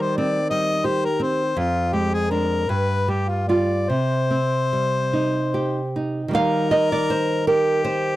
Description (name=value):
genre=romantic duo for harmonica and classical guitar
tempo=47-60 BPM (dotted quarters)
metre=6/8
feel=rubato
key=C minor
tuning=A4 = 440 Hz
part: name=clear harmonica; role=melody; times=0.0-8.2 s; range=F4 to Eb5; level=-23 LUFS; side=left 3 dB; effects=none
part: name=nylon-string guitar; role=accompaniment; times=0.0-8.2 s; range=F2 to F5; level=-21 LUFS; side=right 2 dB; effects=none
room=little or no reverb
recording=dry, close 1970s-style studio recording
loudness=-19 LUFS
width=side -15 dB against mid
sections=0.0-6.4 A section; 6.4-8.2 B section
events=none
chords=0.0 Cm/Eb; 1.6 Ddim/F; 2.7 G7; 3.9 Cm; 6.4 Eb